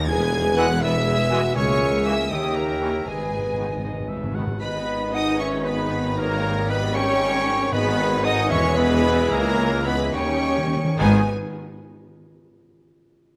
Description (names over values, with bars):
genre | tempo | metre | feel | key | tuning
classical | 68-82 BPM (dotted quarters) | 6/8 | straight | G# minor | A4 = 439 Hz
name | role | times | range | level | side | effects
rich symphonic violin section | melody | 0.0-11.3 s | G#5 to G#6 | -33 LUFS | equal | none
rich symphonic viola section | accompaniment | 0.0-11.3 s | G#3 to B4 | -35 LUFS | equal | none
concert harp | arpeggios | 0.0-11.3 s | G#2 to G#5 | -34 LUFS | equal | none
rich symphonic double bass section | bass | 0.0-11.3 s | E1 to E2 | -30 LUFS | equal | none
warm studio cello section | bass | 0.0-11.3 s | C#2 to D#4 | -30 LUFS | equal | none
warm tuba | bass | 0.0-11.2 s | E1 to D#2 | -32 LUFS | equal | none
clear symphonic violin section | second line | 0.1-11.3 s | G#4 to G#5 | -38 LUFS | equal | none
warm French horn section | sustained chords | 0.1-11.2 s | G#3 to B4 | -31 LUFS | equal | none
warm trumpet section | stabs | 0.1-11.2 s | G#4 to G#5 | -31 LUFS | equal | none
clear oboe | second line | 0.6-11.2 s | G#4 to F#5 | -35 LUFS | equal | none
dark clarinet | second line | 0.6-4.4 s | A#4 to C#5 | -35 LUFS | equal | none
silver concert flute | second line | 0.6-11.3 s | C#5 to G#5 | -33 LUFS | equal | none
bright trombone section | sustained chords | 0.6-11.2 s | D#3 to C#4 | -34 LUFS | equal | none
timpani | percussion | 3.1-4.5, 7.7-11.2 s | G#2 to D#3 | -33 LUFS | equal | none
room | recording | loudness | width
light reverb | close, detailed microphones | -22 LUFS | mono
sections
0.0-4.6 A section; 4.6-11.0 B section; 11.0-12.6 C section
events
timpani fill 3.1-4.6, 10.1-11.0; slowing down 7.0-11.0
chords
0.1 E; 1.6 A#m7b5/C#; 2.3 D#7b9; 3.1 G#m; 6.2 D#7/G#; 7.7 G#m; 8.5 E; 9.3 C#m; 10.1 D#7; 11.0 G#m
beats
| 0.09 0.82 | 1.56 2.31 | 3.07 3.84 | 4.61 5.40 | 6.18 6.96 | 7.73 8.51 | 9.32 10.14 | 11.00